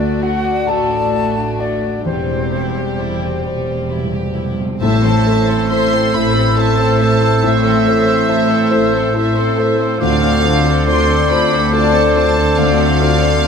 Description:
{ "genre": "cinematic, emotional film score for orchestra", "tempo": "43-47 BPM (dotted quarters)", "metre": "6/8", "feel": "rubato", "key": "C major, A minor from 4.8 s", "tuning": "A4 = 442 Hz", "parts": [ { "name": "warm symphonic violin section", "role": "melody", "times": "0.0-13.5 s", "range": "F#4 to C6", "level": "-23 LUFS", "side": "equal", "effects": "none" }, { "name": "bright silver concert flute", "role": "second line", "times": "0.0-13.5 s", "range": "C5 to E6", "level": "-23 LUFS", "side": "left 1 dB", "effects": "none" }, { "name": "mellow clarinet", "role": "second line", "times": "0.0-13.5 s", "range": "C4 to A4", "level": "-24 LUFS", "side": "right 2 dB", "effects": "none" }, { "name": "rich studio violin section", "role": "second line", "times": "0.0-13.5 s", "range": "G3 to E5", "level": "-26 LUFS", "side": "equal", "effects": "none" }, { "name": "warm concert grand piano", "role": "accompaniment", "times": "0.0-13.5 s", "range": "D2 to A5", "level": "-22 LUFS", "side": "left 1 dB", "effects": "none" }, { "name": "warm studio viola section", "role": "accompaniment", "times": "0.0-13.5 s", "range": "G3 to C5", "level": "-24 LUFS", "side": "equal", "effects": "none" }, { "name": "mellow French horn section", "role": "sustained chords", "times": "0.0-13.5 s", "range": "G3 to G4", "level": "-24 LUFS", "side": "left 3 dB", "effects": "none" }, { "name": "concert harp", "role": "arpeggios", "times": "0.0-13.5 s", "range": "A2 to C6", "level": "-23 LUFS", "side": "left 9 dB", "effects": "none" }, { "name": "dark studio double bass section", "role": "bass", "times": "0.0-13.5 s", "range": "E1 to D2", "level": "-20 LUFS", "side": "right 2 dB", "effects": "none" }, { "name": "warm studio cello section", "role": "bass", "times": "0.0-13.5 s", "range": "D2 to A2", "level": "-21 LUFS", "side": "right 2 dB", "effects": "none" }, { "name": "timpani", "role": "percussion", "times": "2.1-6.1 s", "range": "A2 to C3", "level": "-23 LUFS", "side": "equal", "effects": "none" }, { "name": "warm oboe", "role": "second line", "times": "4.8-13.5 s", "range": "C5", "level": "-24 LUFS", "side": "right 4 dB", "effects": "none" } ], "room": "wet stone room reverb, RT60 1.1 s", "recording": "none", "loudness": "-12 LUFS", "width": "side -6 dB against mid", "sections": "0.0-4.8 A section; 4.8-13.5 B section", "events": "timpani fill 2.1-4.8", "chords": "0.0 D; 2.1 C/E; 4.8 Am; 10.0 Dm7" }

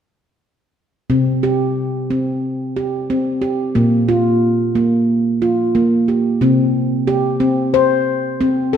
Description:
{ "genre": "world meditative, meditative tuned percussion", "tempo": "90 BPM", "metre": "4/4", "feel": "swing 56% on 16ths", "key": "unclear", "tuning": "A4 = 440 Hz", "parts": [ { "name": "handpan", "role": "solo", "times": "1.1-8.8 s", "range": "Bb2 to C5", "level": "-14 LUFS", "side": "equal", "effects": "none" } ], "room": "wet scoring stage reverb, RT60 1.6 s", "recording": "none", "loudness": "-14 LUFS", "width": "side -8 dB against mid", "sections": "1.1-6.4 A section; 6.4-8.8 B section", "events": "none", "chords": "1.1 C5; 3.8 Bb5; 6.4 C5" }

